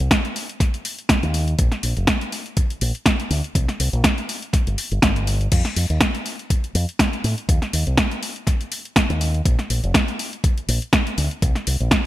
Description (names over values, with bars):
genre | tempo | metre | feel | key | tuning
nu-disco, nu disco | 122 BPM | 4/4 | swing 55% on 16ths | unclear | A4 = 440 Hz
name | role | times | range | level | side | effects
fingered electric bass with an envelope filter | bass | 0.0-11.9 s | F1 to A2 | -21 LUFS | equal | sidechain pumping
house drum kit | drums | 0.0-12.0 s | crash cymbal, hi-hat, snare drum | -21 LUFS | equal | gated reverb
electronic kick drum | drums | 0.1-12.0 s | none | -20 LUFS | equal | none
room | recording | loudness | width
little or no reverb | bright 1980s-style digital production | -18 LUFS | side -15 dB against mid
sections
0.0-12.1 A section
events
none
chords
none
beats
0.11 0.60 1.09 | 1.59 2.08 2.57 3.06 | 3.55 4.04 4.54 5.03 | 5.52 6.01 6.50 7.00 | 7.49 7.98 8.47 8.96 | 9.46 9.95 10.44 10.93 | 11.42 11.91